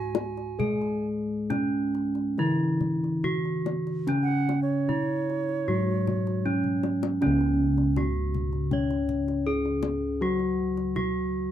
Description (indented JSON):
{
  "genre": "Javanese gamelan",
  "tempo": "66-80 BPM",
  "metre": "4/4",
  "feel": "straight",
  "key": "unclear",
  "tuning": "A4 = 445 Hz",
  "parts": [
    { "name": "gamelan-type bronze metallophone", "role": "melody", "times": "0.0-11.5 s", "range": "C#4 to C#5", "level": "-28 LUFS", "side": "right 3 dB", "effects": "none" },
    { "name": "bright bansuri", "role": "second line", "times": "0.0-7.0 s", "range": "C#5 to G#5", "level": "-34 LUFS", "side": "right 8 dB", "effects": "none" },
    { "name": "gamelan-type bossed gongs", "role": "bass", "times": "0.0-11.5 s", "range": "C#2 to G#4", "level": "-30 LUFS", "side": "left 1 dB", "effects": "none" },
    { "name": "kendang", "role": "percussion", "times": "0.1-11.1 s", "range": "none", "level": "-34 LUFS", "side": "left 7 dB", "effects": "none" },
    { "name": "gamelan-type bronze metallophone", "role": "accompaniment", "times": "0.6-11.5 s", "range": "C#3 to C#4", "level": "-30 LUFS", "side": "left 4 dB", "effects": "none" }
  ],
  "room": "light reverb",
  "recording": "dry, close 1970s-style studio recording",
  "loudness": "-24 LUFS",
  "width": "side -11 dB against mid",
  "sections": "0.0-7.2 A section; 7.2-11.5 B section",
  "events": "drum fill 6.5-7.2",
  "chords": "none"
}